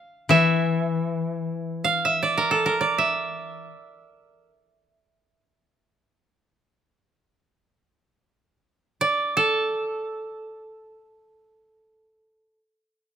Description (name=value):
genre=japanese traditional, Japanese chamber music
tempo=free time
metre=none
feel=none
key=unclear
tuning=A4 = 440 Hz
part: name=koto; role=melody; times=0.0-12.6 s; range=A4 to F5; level=-22 LUFS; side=right 3 dB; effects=none
part: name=koto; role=accompaniment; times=0.3-3.7 s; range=E3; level=-24 LUFS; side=left 4 dB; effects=none
room=light reverb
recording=close, detailed microphones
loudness=-21 LUFS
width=side -9 dB against mid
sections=0.0-12.8 A section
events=none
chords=none